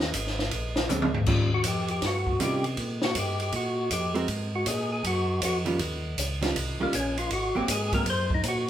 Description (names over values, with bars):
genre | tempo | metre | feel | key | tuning
soul jazz organ trio | 159 BPM | 4/4 | swing 64% on 8ths | unclear | A4 = 440 Hz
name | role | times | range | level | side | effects
mellow tonewheel organ | bass | 0.0-8.7 s | Ab1 to C3 | -31 LUFS | equal | overdrive, chorus vibrato, slow rotary speaker
compact cocktail drum kit | drums | 0.0-8.5 s | crash cymbal, hi-hat, kick drum, ride cymbal, snare drum, toms | -28 LUFS | equal | none
archtop guitar, miked and amplified | accompaniment | 0.9-8.1 s | Eb3 to Bb4 | -30 LUFS | right 3 dB | none
percussive tonewheel organ | melody | 1.5-8.7 s | Bb3 to C5 | -29 LUFS | left 1 dB | slow rotary speaker, overdrive
room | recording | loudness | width
moderate large studio reverb, RT60 1.1 s | band playing live in one room | -25 LUFS | side -11 dB against mid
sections
0.0-1.3 A section; 1.3-8.7 A section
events
drum fill 0.9-1.3; tonewheel organ solo 1.3-8.7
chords
0.0 N.C.; 0.5 Bb9; 1.3 Eb9; 4.3 Absus2; 5.8 Eb9; 7.3 Ab9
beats
0.14 0.52 0.90 | 1.27 1.65 2.03 2.40 | 2.78 3.16 3.54 3.91 | 4.29 4.67 5.04 5.42 | 5.80 6.18 6.55 6.93 | 7.31 7.68 8.06 8.44